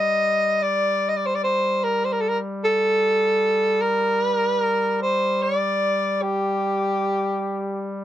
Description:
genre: caucasian folk, Caucasian lament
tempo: 64-77 BPM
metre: 3/4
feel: rubato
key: G minor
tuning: A4 = 440 Hz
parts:
  - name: clear soprano saxophone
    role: melody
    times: 0.0-7.9 s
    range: G4 to Eb5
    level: -20 LUFS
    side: equal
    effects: none
  - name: mellow duduk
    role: drone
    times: 0.0-8.0 s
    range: G3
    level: -29 LUFS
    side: left 1 dB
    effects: stereo widening
room: little or no reverb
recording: dry, close 1970s-style studio recording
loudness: -19 LUFS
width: side -12 dB against mid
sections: 0.0-8.0 A section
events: none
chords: none

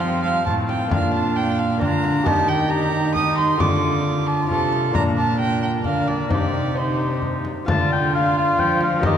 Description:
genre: classical, renaissance-style consort dance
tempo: 134 BPM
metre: 3/4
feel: straight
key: unclear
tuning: A4 = 436 Hz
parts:
  - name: clear oboe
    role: melody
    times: 0.0-9.2 s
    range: F4 to A5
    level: -27 LUFS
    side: left 5 dB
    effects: none
  - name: dark violin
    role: second line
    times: 0.0-9.2 s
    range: F4 to Eb6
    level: -23 LUFS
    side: right 3 dB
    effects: none
  - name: lute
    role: accompaniment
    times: 0.0-9.2 s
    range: A2 to F5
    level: -28 LUFS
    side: equal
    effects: none
  - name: warm viola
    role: accompaniment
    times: 0.0-9.2 s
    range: C4 to F4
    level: -27 LUFS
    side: left 1 dB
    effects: none
  - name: dark cello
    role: bass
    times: 0.0-9.2 s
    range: A2 to F3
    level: -24 LUFS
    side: right 1 dB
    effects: none
  - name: frame drum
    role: percussion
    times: 0.5-9.2 s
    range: none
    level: -26 LUFS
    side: left 2 dB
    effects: none
room: wet cathedral reverb, RT60 4.8 s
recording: dark, warm production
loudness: -18 LUFS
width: side -9 dB against mid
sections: 0.0-7.7 A section; 7.7-9.2 A section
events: none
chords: 0.0 F; 0.9 Bb; 2.3 Eb; 3.6 Dm; 4.9 Bb; 6.3 Cm; 7.7 Dm

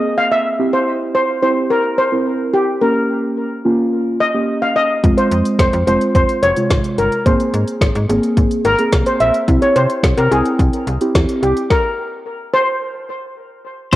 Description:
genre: synth-pop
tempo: 108 BPM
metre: 4/4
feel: straight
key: unclear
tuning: A4 = 440 Hz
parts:
  - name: steel pan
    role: melody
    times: 0.0-13.6 s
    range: G4 to F5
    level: -17 LUFS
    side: left 1 dB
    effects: cassette tape, analog delay
  - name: muted felt-like synth keys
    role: accompaniment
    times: 0.0-14.0 s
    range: C3 to G5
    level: -18 LUFS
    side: right 1 dB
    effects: chorus, cassette tape
  - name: slap-like FM bass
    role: bass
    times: 5.0-14.0 s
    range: F1 to C3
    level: -19 LUFS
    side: equal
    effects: none
  - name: deep house drum kit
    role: drums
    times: 5.0-14.0 s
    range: crash cymbal, hi-hat, kick drum, snare drum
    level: -16 LUFS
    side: equal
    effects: cassette tape
  - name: clean electric guitar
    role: second line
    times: 13.9-14.0 s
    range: C5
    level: -14 LUFS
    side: left 3 dB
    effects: tremolo, cassette tape
room: moderate spring reverb, RT60 2.1 s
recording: home recording on cassette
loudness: -13 LUFS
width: side -15 dB against mid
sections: 0.0-13.9 A section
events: stop 11.7-13.9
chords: 0.0 Abadd9; 0.6 C; 2.8 Gdim; 5.0 Fm; 7.3 Abadd9; 9.5 C; 11.7 N.C.

